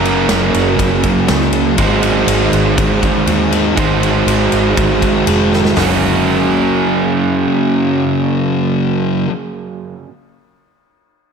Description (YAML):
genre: rock, shoegaze and dream pop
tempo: 121 BPM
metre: 4/4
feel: straight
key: F# major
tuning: A4 = 440 Hz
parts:
  - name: overdriven electric guitar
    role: riff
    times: 0.0-9.3 s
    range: F#2 to B#4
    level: -15 LUFS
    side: right 8 dB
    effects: reverse reverb
  - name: thick fuzz guitar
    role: riff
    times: 0.0-9.3 s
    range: F#2 to G#3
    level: -17 LUFS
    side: left 10 dB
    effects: distortion, analog chorus
  - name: vintage muted fingered electric bass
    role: bass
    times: 0.0-8.9 s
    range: E#1 to D#2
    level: -20 LUFS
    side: equal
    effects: none
  - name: big rock drum kit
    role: drums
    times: 0.1-5.9 s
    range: hi-hat, kick drum, ride cymbal, snare drum, toms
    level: -19 LUFS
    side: equal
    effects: none
room: moderate lush hall reverb, RT60 1.7 s, small room ambience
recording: none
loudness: -11 LUFS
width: side -6 dB against mid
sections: 0.0-5.8 A section; 5.8-9.7 B section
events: drum fill 5.5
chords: 0.0 F#; 1.8 G#5; 5.8 F#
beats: 0.30 0.80 1.30 | 1.79 2.29 2.79 3.28 | 3.78 4.28 4.77 5.27 | 5.77 6.26 6.76 7.26 | 7.76 8.26 8.75 9.25